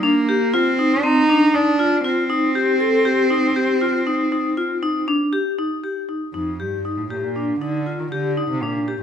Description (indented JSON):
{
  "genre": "contemporary instrumental, contemporary",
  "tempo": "119 BPM",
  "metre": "5/4",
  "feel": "straight",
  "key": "Eb lydian",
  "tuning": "A4 = 439 Hz",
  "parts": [
    { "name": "rich cello", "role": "melody", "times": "0.0-9.0 s", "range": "F2 to Eb4", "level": "-20 LUFS", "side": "right 2 dB", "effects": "none" },
    { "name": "vibraphone with hard mallets", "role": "arpeggios", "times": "0.0-9.0 s", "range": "C4 to A4", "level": "-19 LUFS", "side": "left 2 dB", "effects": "none" }
  ],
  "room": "light reverb",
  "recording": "minimal, uncompressed stereo recording",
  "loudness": "-17 LUFS",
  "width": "side -8 dB against mid",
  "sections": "0.0-5.6 A section; 5.6-9.0 B section",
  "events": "none",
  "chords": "0.0 Cmadd9; 5.6 Ebmaj7",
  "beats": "0.04 | 0.54 1.04 1.54 2.05 2.55 | 3.06 3.56 4.06 4.57 5.07 | 5.58 6.09 6.59 7.10 7.61 | 8.12 8.63"
}